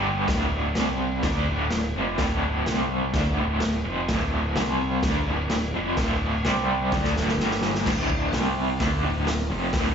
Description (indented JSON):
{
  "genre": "garage rock duo or trio",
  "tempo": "127 BPM",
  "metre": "4/4",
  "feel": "straight",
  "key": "unclear",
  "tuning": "A4 = 440 Hz",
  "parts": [
    { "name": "raw garage guitar", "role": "riff", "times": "0.0-9.9 s", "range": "D2 to D4", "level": "-25 LUFS", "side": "equal", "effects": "overdrive, tremolo, slapback echo" },
    { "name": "growling picked electric bass", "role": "bass", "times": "0.0-9.9 s", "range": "D1 to D2", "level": "-30 LUFS", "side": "equal", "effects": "overdrive" },
    { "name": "raw garage drum kit", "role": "drums", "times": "0.3-9.9 s", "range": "crash cymbal, hi-hat, kick drum, snare drum", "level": "-27 LUFS", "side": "equal", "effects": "none" }
  ],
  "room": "light reverb",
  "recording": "live gig heard through the venue's PA, club reverb, nothing above 7.8 kHz",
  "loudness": "-22 LUFS",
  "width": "side -7 dB against mid",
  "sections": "0.0-7.9 A section; 7.9-9.9 B section",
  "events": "drum fill 6.9-7.9",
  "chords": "0.3 D5; 0.8 C5; 1.2 D5; 2.7 C5; 3.1 D5; 4.6 C5; 5.0 D5; 6.5 C5; 6.9 D5; 7.4 G5; 7.9 D5; 8.3 C5; 8.8 D5"
}